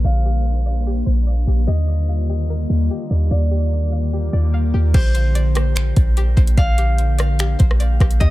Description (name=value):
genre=hip hop, atmospheric cloud-rap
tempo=147 BPM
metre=4/4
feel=half-time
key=Bb major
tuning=A4 = 440 Hz
part: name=Celtic harp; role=melody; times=0.0-8.3 s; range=C5 to F5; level=-29 LUFS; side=left 2 dB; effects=tape echo
part: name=glassy FM pad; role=sustained chords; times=0.0-8.3 s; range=D3 to G4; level=-27 LUFS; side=left 1 dB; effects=ensemble chorus, built-in reverb, sidechain pumping
part: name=string-like resonator pluck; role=arpeggios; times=0.0-8.3 s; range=G4 to D6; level=-34 LUFS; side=left 3 dB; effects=chorus, tape echo
part: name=warm 808-style bass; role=bass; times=0.0-8.3 s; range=Bb1 to Eb2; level=-16 LUFS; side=equal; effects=none
part: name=wind-like tuned noise texture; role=texture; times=0.0-4.9 s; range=G3 to D6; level=-37 LUFS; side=equal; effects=built-in reverb
part: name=smooth R&B drum kit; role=drums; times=4.9-8.3 s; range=crash cymbal, finger snaps, hi-hat, kick drum, rim click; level=-18 LUFS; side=equal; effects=none
room=digital ambience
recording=echo-heavy mix, low-pass filter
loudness=-15 LUFS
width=side -17 dB against mid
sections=0.0-4.9 A section; 4.9-8.3 B section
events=filter sweep 0.0-4.9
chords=0.0 Bb69; 1.7 Ebmaj9; 4.9 Bb69